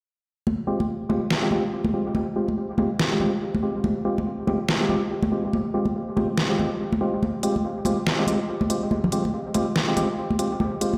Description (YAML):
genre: deep dubstep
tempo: 142 BPM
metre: 4/4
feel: swing 59% on 16ths, half-time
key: F minor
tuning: A4 = 441 Hz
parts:
  - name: congas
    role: percussion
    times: 0.5-11.0 s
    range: none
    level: -29 LUFS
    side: equal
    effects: none
  - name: percussive organ stab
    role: stabs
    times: 0.7-10.9 s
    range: Ab3 to G4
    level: -27 LUFS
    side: equal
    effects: chorus, dub echo
  - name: dubstep drum kit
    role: drums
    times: 1.3-10.9 s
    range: hi-hat, snare drum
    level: -28 LUFS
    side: equal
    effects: studio reverb
room: wet echo chamber reverb, RT60 1.6 s, digital ambience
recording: played on a big sound system in a bare room, large studio reverb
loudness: -24 LUFS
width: mono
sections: 0.5-11.0 A section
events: none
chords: 0.5 Fmadd9